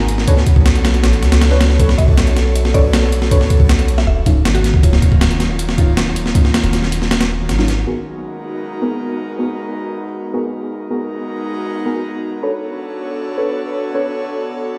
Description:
drum and bass, jungle; 158 BPM; 4/4; straight; G# dorian; A4 = 440 Hz
airy breathy pad; sustained chords; 0.0-14.8 s; D#3 to C#5; -25 LUFS; equal; chorus
long sustained 808-style bass; bass; 0.0-7.9 s; D#1 to C#2; -18 LUFS; equal
breakbeat sampler-style drum kit; drums; 0.1-7.8 s; hi-hat, kick drum, snare drum; -16 LUFS; equal
deep mellow chord stab; stabs; 0.3-14.0 s; F#3 to C#5; -26 LUFS; equal; chorus, phaser, dub echo
mallet-like synth pluck; melody; 2.0-5.1 s; F#4 to E5; -30 LUFS; equal; chorus, cassette tape, dub echo
light reverb; played on a big sound system in a bare room, stone room reverb; -16 LUFS; mono
0.0-7.9 A section; 7.9-14.8 B section
drop 0.0-7.9; kick drops out 7.1-7.9
0.3 Bm9; 4.1 D#m9; 7.9 G#m9; 12.4 Bm9

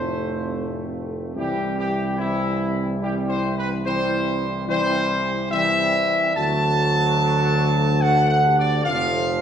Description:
classical, ceremonial fanfare; 72 BPM; 3/4; straight; C major; A4 = 441 Hz
mellow trumpet section; melody; 0.0-9.4 s; E4 to A5; -22 LUFS; equal
mellow French horn section; sustained chords; 0.0-9.4 s; A3 to A4; -29 LUFS; left 3 dB
mellow trombone section; sustained chords; 0.0-9.4 s; A2 to A3; -28 LUFS; right 1 dB
warm tuba; bass; 0.0-9.4 s; F1 to D2; -24 LUFS; right 1 dB
wet recital hall reverb, RT60 1.6 s; recorded in a church or concert hall; -19 LUFS; side -8 dB against mid
0.0-9.4 A section
0.0 F; 1.3 C; 6.3 D; 8.8 F

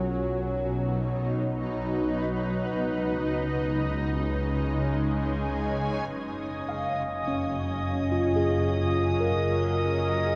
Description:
ambient; free time; F# major; A4 = 440 Hz
shimmering ambient pad; sustained chords; 0.0-10.4 s; B2 to G#5; -31 LUFS; equal; chorus, built-in reverb
mellow tine electric piano; arpeggios; 0.0-0.4, 6.7-10.4 s; C#4 to E#5; -31 LUFS; equal; lush chorus, diffuse ambient delay
dark studio double bass section; bass; 0.0-10.4 s; F#1 to C#2; -33 LUFS; equal
drifting glass-harmonics texture; texture; 6.4-10.4 s; D#5 to D#6; -35 LUFS; equal; chorus, built-in reverb
wet huge ambient reverb, RT60 9.0 s; worn, warbling old tape, cassette tape, warbly pitch drift; -28 LUFS; mono
0.0-6.1 A section; 6.1-10.4 B section
filter sweep on ambient pad 0.0-6.1; fade-in on ambient pad 6.1-10.4
0.0 B; 2.7 C#sus2; 6.1 F#add9

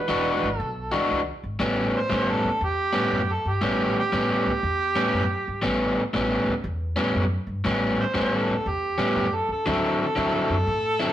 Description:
electric blues shuffle; 119 BPM; 4/4; swing 66% on 8ths; A mixolydian; A4 = 440 Hz
mellow harmonica; melody; 0.0-11.1 s; G4 to C5; -26 LUFS; right 2 dB; overdrive
overdriven electric guitar; riff; 0.1-11.1 s; A2 to F#4; -24 LUFS; left 1 dB
upright bass; bass; 0.1-11.0 s; E1 to A2; -31 LUFS; equal
wet stone room reverb, RT60 0.9 s; rough rehearsal-room recording; -22 LUFS; side -12 dB against mid
0.0-1.6 A section; 1.6-11.1 B section
harmonica solo 1.6-11.1
0.0 E9; 1.6 A9; 9.7 D9

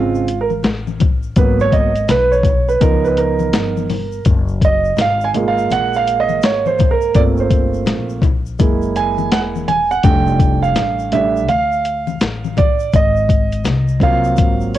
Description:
hip hop, jazz-hop; 83 BPM; 4/4; swing 64% on 16ths; A4 = 441 Hz
dark baby grand piano; accompaniment; 0.0-14.8 s; Db3 to Ab5; -16 LUFS; right 4 dB
upright bass; bass; 0.0-14.8 s; Fb1 to D2; -21 LUFS; left 2 dB; tube saturation
egg shaker and congas; percussion; 0.1-14.8 s; -26 LUFS; left 11 dB
boom bap sampler-style drum kit; drums; 0.3-14.8 s; hi-hat, kick drum, snare drum; -16 LUFS; left 2 dB; cassette tape
light reverb, small room ambience; home recording on cassette; -13 LUFS; side -13 dB against mid
0.0-14.8 A section
grand piano solo 0.0-14.8
0.0 Bbm9 (rootless); 1.4 Abm9; 2.8 Db7; 4.3 Gbmaj9; 7.1 Gm11; 8.6 Gb9; 10.0 F6; 12.9 Ab13

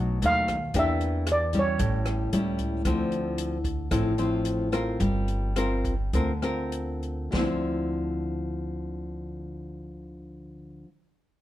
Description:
bossa nova; 97-114 BPM; 4/4; straight; D minor; A4 = 440 Hz
nylon-string guitar; accompaniment; 0.0-10.9 s; A2 to Bb4; -28 LUFS; left 1 dB
upright bass; bass; 0.0-10.8 s; G1 to E2; -30 LUFS; equal
open jazz drum kit; drums; 0.2-7.5 s; hi-hat, kick drum, rim click, snare drum; -34 LUFS; equal
steel pan; melody; 0.3-2.3 s; C#5 to F5; -26 LUFS; right 1 dB
light reverb; close, detailed microphones; -24 LUFS; side -14 dB against mid
0.0-2.9 A section; 2.9-7.3 B section; 7.3-11.4 C section
slowing down 2.9-7.3
0.0 B7; 0.8 Em7b5; 1.8 A7; 2.9 Dm9; 5.0 Gm7; 7.3 Dm9

